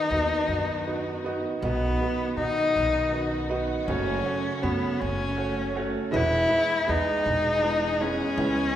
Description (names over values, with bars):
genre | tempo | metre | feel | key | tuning
acoustic folk-pop ballad | 53 BPM (dotted quarters) | 6/8 | straight | E major | A4 = 440 Hz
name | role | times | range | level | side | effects
warm cello | melody | 0.0-8.8 s | B3 to E4 | -25 LUFS | left 2 dB | none
felt-muted upright piano | accompaniment | 0.0-8.8 s | F#1 to D#5 | -30 LUFS | right 3 dB | none
warm chamber string section | sustained chords | 0.0-8.8 s | B2 to G#4 | -36 LUFS | equal | none
upright bass | bass | 0.1-8.7 s | E1 to B2 | -32 LUFS | equal | none
room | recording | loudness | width
wet recital hall reverb, RT60 1.6 s | recorded in a church or concert hall | -23 LUFS | side -11 dB against mid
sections
0.0-1.6 A section; 1.6-8.8 B section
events
none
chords
0.0 B/D#; 1.6 B; 3.9 F#m; 6.1 E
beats
0.48 | 1.61 2.74 | 3.87 5.00 | 6.12 7.24 | 8.37